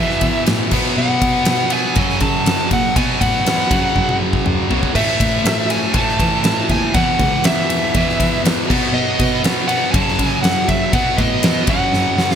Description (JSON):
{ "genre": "hard rock", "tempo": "120 BPM", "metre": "4/4", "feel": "straight", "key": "F# dorian", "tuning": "A4 = 442 Hz", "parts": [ { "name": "dark smooth lead guitar", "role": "melody", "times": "0.0-12.4 s", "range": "D#5 to A5", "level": "-20 LUFS", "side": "right 1 dB", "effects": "overdrive, digital delay" }, { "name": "distorted electric guitar", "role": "riff", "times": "0.0-12.4 s", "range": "E2 to B3", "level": "-19 LUFS", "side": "equal", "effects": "overdrive" }, { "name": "dark cello", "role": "bass", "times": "0.0-12.3 s", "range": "C#2 to E3", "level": "-22 LUFS", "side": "equal", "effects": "none" }, { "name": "huge arena drum kit", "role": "drums", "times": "0.1-12.4 s", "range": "crash cymbal, kick drum, ride cymbal, snare drum, toms", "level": "-19 LUFS", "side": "equal", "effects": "none" } ], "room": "light reverb, studio ambience", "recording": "bright 1980s-style digital production", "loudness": "-14 LUFS", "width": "side -8 dB against mid", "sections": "0.0-12.4 A section", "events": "drum fill 4.0-5.0, 11.9-12.4", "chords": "0.0 E5; 0.7 B5; 2.0 F#m; 3.0 B5; 3.7 F#5; 5.0 A5; 6.9 E5; 8.7 B; 9.9 F#m; 10.9 B; 11.7 F#5" }